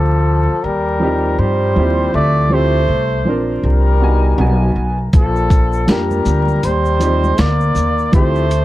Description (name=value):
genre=hip hop, jazz-hop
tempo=80 BPM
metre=4/4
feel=swing 60% on 16ths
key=unclear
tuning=A4 = 440 Hz
part: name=warm flugelhorn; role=melody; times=0.0-8.6 s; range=A4 to D5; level=-19 LUFS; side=right 1 dB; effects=analog delay
part: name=bright trombone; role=second line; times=0.0-8.6 s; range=F3 to Bb3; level=-22 LUFS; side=left 3 dB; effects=none
part: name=upright bass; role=bass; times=0.0-8.6 s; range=Bb1 to G2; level=-16 LUFS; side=equal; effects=none
part: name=warm upright piano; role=accompaniment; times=1.0-8.4 s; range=F3 to G#5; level=-19 LUFS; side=right 1 dB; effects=none
part: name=boom bap sampler-style drum kit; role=drums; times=5.1-8.6 s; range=hi-hat, kick drum, shaker, snare drum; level=-14 LUFS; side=equal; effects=none
part: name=egg shaker and congas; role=percussion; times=5.1-8.6 s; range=none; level=-28 LUFS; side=right 1 dB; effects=none
room=light reverb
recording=dark, warm production, vinyl crackle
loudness=-12 LUFS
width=side -16 dB against mid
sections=0.0-8.6 A section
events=none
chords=0.0 Bb (rootless); 0.6 Eb69; 2.1 Dm11; 3.6 C9sus4; 4.4 B6; 5.1 Bb6; 6.6 Eb69; 8.1 Dm11